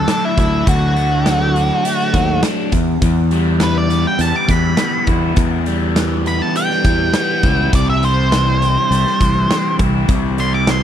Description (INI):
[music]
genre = classic rock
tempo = 102 BPM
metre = 4/4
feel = straight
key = E minor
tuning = A4 = 439 Hz
[part]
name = octave-fuzz lead guitar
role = melody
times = 0.0-10.8 s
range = E4 to D6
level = -18 LUFS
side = equal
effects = distortion, slapback echo
[part]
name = crunchy overdriven guitar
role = riff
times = 0.0-10.8 s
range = E2 to A4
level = -18 LUFS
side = left 1 dB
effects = phaser
[part]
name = growling fingered electric bass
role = bass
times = 0.0-10.8 s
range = C2 to E2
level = -17 LUFS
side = equal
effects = overdrive
[part]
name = big rock drum kit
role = drums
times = 0.1-10.8 s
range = hi-hat, kick drum, snare drum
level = -20 LUFS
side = equal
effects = none
[sound]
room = little or no reverb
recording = dry, close 1970s-style studio recording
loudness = -13 LUFS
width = side -10 dB against mid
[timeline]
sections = 0.0-10.8 A section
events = lead electric guitar solo 0.0-10.8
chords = 0.0 Dadd9; 2.7 Em; 7.7 C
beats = 0.07 | 0.66 1.25 1.84 2.43 | 3.02 3.60 4.19 4.78 | 5.37 5.96 6.55 7.14 | 7.73 8.32 8.91 9.50 | 10.09 10.68